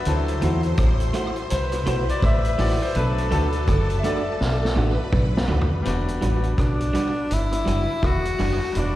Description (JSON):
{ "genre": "lovers rock reggae", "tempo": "83 BPM", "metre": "4/4", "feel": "swing 61% on 16ths", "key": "E minor", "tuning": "A4 = 442 Hz", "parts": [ { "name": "string machine, violins", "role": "second line", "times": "0.0-5.8 s", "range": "A4 to C6", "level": "-32 LUFS", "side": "right 1 dB", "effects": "ensemble chorus, plate reverb, slapback echo" }, { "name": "bright concert grand piano", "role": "accompaniment", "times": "0.0-9.0 s", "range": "F#3 to E5", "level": "-28 LUFS", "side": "left 2 dB", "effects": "tape echo, plate reverb, slapback echo" }, { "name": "deep dub fingered electric bass", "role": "bass", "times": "0.1-9.0 s", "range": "E1 to E2", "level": "-22 LUFS", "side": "equal", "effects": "none" }, { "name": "vintage drum kit", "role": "drums", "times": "0.1-9.0 s", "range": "hi-hat, kick drum, rim click, snare drum, toms", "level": "-27 LUFS", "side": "equal", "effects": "tape echo" }, { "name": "electric guitar through a small old amp", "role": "stabs", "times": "0.4-8.7 s", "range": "G3 to C5", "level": "-29 LUFS", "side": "right 2 dB", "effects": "plate reverb, slapback echo" }, { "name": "bright tenor saxophone", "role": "melody", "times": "6.6-9.0 s", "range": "D4 to F#4", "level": "-25 LUFS", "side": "left 1 dB", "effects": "tape echo, plate reverb, slapback echo" } ], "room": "light reverb", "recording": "live gig heard through the venue's PA, recital hall reverb", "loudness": "-20 LUFS", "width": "side -14 dB against mid", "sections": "0.0-5.9 A section; 5.9-9.0 B section", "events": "grand piano solo 0.0-5.9; drum fill 4.4-5.9", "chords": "0.1 D9; 3.0 Bm7; 5.9 Em9" }